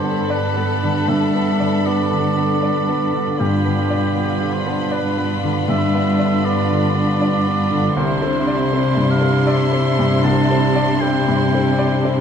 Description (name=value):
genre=cinematic, emotional film score for orchestra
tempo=79 BPM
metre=3/4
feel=rubato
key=unclear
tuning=A4 = 445 Hz
part: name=warm studio violin section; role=melody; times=0.0-12.2 s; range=B5 to C6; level=-29 LUFS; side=left 4 dB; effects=none
part: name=warm oboe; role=second line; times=0.0-12.2 s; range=G4 to A5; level=-24 LUFS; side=right 2 dB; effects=none
part: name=warm studio violin section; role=second line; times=0.0-12.2 s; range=E4 to A4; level=-28 LUFS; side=left 4 dB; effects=none
part: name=bright baby grand piano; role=accompaniment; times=0.0-12.2 s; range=C2 to D5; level=-21 LUFS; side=right 1 dB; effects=none
part: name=warm studio viola section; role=accompaniment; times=0.0-12.2 s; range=D4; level=-24 LUFS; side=equal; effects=none
part: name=concert harp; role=arpeggios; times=0.0-12.2 s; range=G2 to B5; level=-25 LUFS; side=left 7 dB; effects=none
part: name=warm studio cello section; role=bass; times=0.0-12.2 s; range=G2 to C3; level=-21 LUFS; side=right 2 dB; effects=none
room=moderate recital hall reverb, RT60 1.8 s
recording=none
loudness=-15 LUFS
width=side -7 dB against mid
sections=0.0-12.2 A section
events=none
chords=0.0 Gadd9; 3.4 G7; 8.0 Cadd9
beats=0.31 | 1.10 1.87 2.63 | 3.40 4.16 4.91 | 5.69 6.45 7.20 | 7.96 8.71 9.47 | 10.25 11.01 11.78